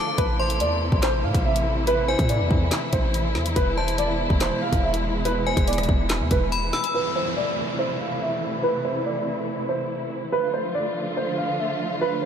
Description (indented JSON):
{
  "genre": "hip hop, drill",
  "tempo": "142 BPM",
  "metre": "4/4",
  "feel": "half-time",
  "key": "A harmonic minor",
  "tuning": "A4 = 440 Hz",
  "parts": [
    { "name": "dark baby grand piano", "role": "melody", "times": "0.0-12.3 s", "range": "B4 to F5", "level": "-26 LUFS", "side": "right 1 dB", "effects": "analog chorus, low-pass filter, ping-pong delay" },
    { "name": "metallic FM bell", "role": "second line", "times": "0.0-6.9 s", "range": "G#5 to E6", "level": "-31 LUFS", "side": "left 3 dB", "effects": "chorus, ping-pong delay" },
    { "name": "dark symphonic string section", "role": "sustained chords", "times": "0.0-12.3 s", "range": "B2 to F4", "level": "-28 LUFS", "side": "equal", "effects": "low-pass filter" },
    { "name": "hard-hitting 808-style bass", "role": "bass", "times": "0.2-6.7 s", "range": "D1 to A2", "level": "-25 LUFS", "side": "equal", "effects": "none" },
    { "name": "drill drum kit", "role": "drums", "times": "0.2-6.9 s", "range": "handclaps, hi-hat, kick drum, rim click, snare drum", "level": "-26 LUFS", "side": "equal", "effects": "none" },
    { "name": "downlifter", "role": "sound effects", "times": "6.9-10.3 s", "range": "none", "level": "-35 LUFS", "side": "equal", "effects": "none" }
  ],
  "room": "moderate huge ambient reverb, RT60 7.8 s",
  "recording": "dreamy mix soaked in reverb",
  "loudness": "-21 LUFS",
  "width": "side -8 dB against mid",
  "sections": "0.0-6.9 A section; 6.9-12.3 B section",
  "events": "break 0.0; filter sweep 6.9-12.3",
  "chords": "0.2 Am; 3.6 E; 6.9 Am; 10.3 Dm"
}